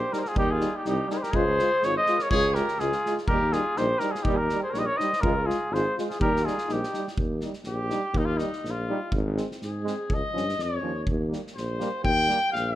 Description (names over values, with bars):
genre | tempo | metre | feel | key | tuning
balkan folk, Balkan brass band | 123 BPM | 2/4 | swing 54% on 16ths | Eb mixolydian | A4 = 440 Hz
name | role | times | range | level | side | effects
clear flugelhorn | melody | 0.0-7.1 s | G4 to Eb5 | -26 LUFS | equal | none
mellow trumpet | second line | 0.0-12.8 s | Eb4 to G5 | -30 LUFS | left 1 dB | none
bright trombone | accompaniment | 0.1-12.4 s | F3 to Ab3 | -34 LUFS | right 6 dB | none
clear French horn | accompaniment | 0.1-12.4 s | Bb3 to F4 | -34 LUFS | left 6 dB | none
loose indie drum kit | percussion | 0.1-12.6 s | kick drum, snare drum | -32 LUFS | equal | none
warm tuba | bass | 0.4-12.8 s | Ab1 to Ab2 | -29 LUFS | equal | none
room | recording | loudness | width
light reverb | none | -24 LUFS | side -14 dB against mid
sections
0.0-7.2 A section; 7.2-12.8 B section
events
trumpet solo 7.2-12.8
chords
0.0 Eb; 1.3 Db; 3.3 Eb; 5.2 Db; 6.2 Eb; 9.1 Ab; 10.1 Db; 11.1 Eb